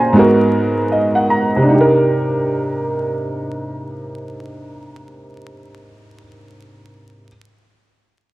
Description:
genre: hip hop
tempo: 78 BPM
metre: 4/4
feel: swing 59% on 16ths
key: unclear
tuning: A4 = 444 Hz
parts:
  - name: warm upright piano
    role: accompaniment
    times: 0.0-7.3 s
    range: Ab2 to C6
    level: -14 LUFS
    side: right 1 dB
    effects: cassette tape
room: moderate plate reverb, RT60 1.8 s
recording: vinyl crackle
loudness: -13 LUFS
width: side -18 dB against mid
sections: 0.0-1.7 A section; 1.7-4.8 B section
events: upright piano fill 0.5-1.7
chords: 0.2 Abm9; 1.7 Cm9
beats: 0.15 0.92 | 1.69 2.46 3.23 4.00

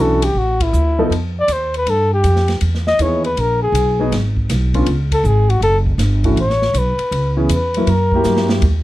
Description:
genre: jazz, small-group swing and bop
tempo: 160 BPM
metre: 4/4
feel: swing 66% on 8ths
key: unclear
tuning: A4 = 442 Hz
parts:
  - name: mellow flugelhorn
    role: melody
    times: 0.0-8.5 s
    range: E4 to D#5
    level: -17 LUFS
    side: left 1 dB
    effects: none
  - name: warm concert grand piano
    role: accompaniment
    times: 0.0-8.6 s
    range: D3 to A#4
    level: -18 LUFS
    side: equal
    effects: none
  - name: upright bass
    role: bass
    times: 0.0-8.8 s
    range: F#1 to G2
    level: -17 LUFS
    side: equal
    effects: none
  - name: open jazz drum kit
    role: drums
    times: 0.2-8.7 s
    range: hi-hat, kick drum, ride cymbal, snare drum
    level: -25 LUFS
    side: equal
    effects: none
room: little or no reverb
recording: dark, warm production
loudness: -14 LUFS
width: side -16 dB against mid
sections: 0.0-8.6 A section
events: band accent 0.6; drum fill 8.3-8.6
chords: 0.0 Dmaj9; 1.1 D#add9; 2.6 Emaj7; 4.1 G#m; 4.9 C#5; 5.6 F#m; 7.1 C#m7; 7.9 F#7b9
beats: 0.37 0.74 | 1.12 1.49 1.87 2.25 | 2.62 3.00 3.37 3.75 | 4.12 4.50 4.87 5.25 | 5.62 6.00 6.37 6.75 | 7.12 7.50 7.88 8.25 | 8.63

